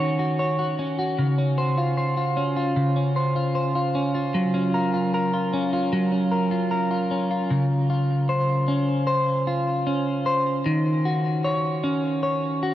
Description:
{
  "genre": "dream pop",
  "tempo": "76 BPM",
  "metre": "4/4",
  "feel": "straight",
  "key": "Db major",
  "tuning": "A4 = 441 Hz",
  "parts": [
    { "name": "clean electric guitar", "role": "solo", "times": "0.0-12.7 s", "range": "Db3 to Db5", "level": "-21 LUFS", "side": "equal", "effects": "analog chorus, ping-pong delay" }
  ],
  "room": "wet huge ambient reverb, RT60 7.9 s",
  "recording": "worn, warbling old tape, cassette tape, warbly pitch drift",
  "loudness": "-21 LUFS",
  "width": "side -13 dB against mid",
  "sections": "0.0-7.5 A section; 7.5-12.7 B section",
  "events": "none",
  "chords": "0.0 Ebm7; 1.2 Dbmaj7; 4.3 Gbmaj7; 7.5 Dbmaj7; 10.7 Ebm7"
}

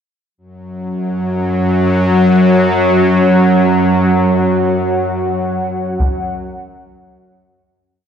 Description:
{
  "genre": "dark ambient drone",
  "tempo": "free time",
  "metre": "none",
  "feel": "none",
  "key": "unclear",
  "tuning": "A4 = 440 Hz",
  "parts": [
    { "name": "deep dark ambient pad", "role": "sustained chords", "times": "2.0-7.9 s", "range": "F#4 to F#5", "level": "-21 LUFS", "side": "right 1 dB", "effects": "chorus, built-in reverb" },
    { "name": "bowed-like drone", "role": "drone", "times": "0.7-8.0 s", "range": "F#2 to F#3", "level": "-12 LUFS", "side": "equal", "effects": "built-in reverb" },
    { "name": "taiko ensemble", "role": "percussion", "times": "6.0-6.2 s", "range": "none", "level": "-18 LUFS", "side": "equal", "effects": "low-pass filter on perc" }
  ],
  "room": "wet huge ambient reverb, RT60 8.1 s",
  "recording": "dark, warm production",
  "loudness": "-11 LUFS",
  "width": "side -8 dB against mid",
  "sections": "0.4-7.9 A section",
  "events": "fade-in on ambient pad 0.4-7.9; fade-out 4.1-7.9",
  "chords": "0.4 F#5"
}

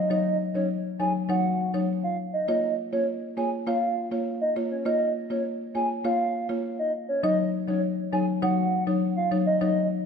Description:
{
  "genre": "dancehall",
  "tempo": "101 BPM",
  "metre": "4/4",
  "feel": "straight",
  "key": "unclear",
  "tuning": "A4 = 440 Hz",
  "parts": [
    { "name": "hollow clarinet-like synth lead", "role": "melody", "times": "0.0-9.9 s", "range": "Db5 to Ab5", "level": "-27 LUFS", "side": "right 1 dB", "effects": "chorus, ping-pong delay" },
    { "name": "buzzing marimba with medium mallets", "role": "accompaniment", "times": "0.0-10.0 s", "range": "Gb3 to Db5", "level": "-26 LUFS", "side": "left 2 dB", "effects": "none" }
  ],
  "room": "light reverb, small room ambience",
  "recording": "lossy compression artefacts",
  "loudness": "-24 LUFS",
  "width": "side -6 dB against mid",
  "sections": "0.0-7.2 A section; 7.2-10.1 B section",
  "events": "none",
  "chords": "0.0 Ebm7; 2.5 Bbm; 7.2 Ebm7"
}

